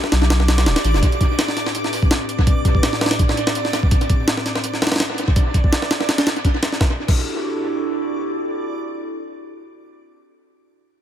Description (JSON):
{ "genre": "drum and bass, jungle", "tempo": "166 BPM", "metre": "4/4", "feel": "swing 54% on 16ths", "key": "E minor", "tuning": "A4 = 441 Hz", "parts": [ { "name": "warbly tape-like pad", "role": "sustained chords", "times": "0.0-10.1 s", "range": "A2 to C5", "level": "-26 LUFS", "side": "equal", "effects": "chorus, built-in reverb" }, { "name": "jungle sampler-style drum kit", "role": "drums", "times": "0.0-7.2 s", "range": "crash cymbal, hi-hat, kick drum, snare drum", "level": "-17 LUFS", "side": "equal", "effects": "dub echo" }, { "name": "backwards swelling texture", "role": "texture", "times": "0.0-6.8 s", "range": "D5 to D6", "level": "-28 LUFS", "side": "right 2 dB", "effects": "built-in reverb" }, { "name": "saturated sub bass", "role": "bass", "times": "0.1-1.0 s", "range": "D1 to B1", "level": "-15 LUFS", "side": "equal", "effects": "tube saturation" } ], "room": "light reverb", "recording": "echo-heavy mix", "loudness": "-16 LUFS", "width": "side -10 dB against mid", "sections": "0.0-6.8 A section; 6.8-9.7 B section", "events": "none", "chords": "0.0 Em11 (rootless); 1.0 Am11; 6.8 Em11" }